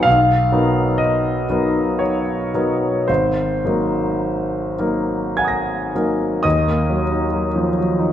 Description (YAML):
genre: classical, impressionist solo piano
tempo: 48-70 BPM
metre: 3/4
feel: rubato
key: Eb minor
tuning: A4 = 440 Hz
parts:
  - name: clear concert grand piano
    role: solo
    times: 0.0-8.1 s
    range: Ab1 to Bb6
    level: -16 LUFS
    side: equal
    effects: none
room: wet concert hall reverb, RT60 2.0 s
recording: dark, warm production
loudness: -16 LUFS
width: side -10 dB against mid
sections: 0.0-6.4 A section; 6.4-8.1 B section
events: none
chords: 0.1 Bmaj7; 3.1 Ab9; 6.4 Ebmadd9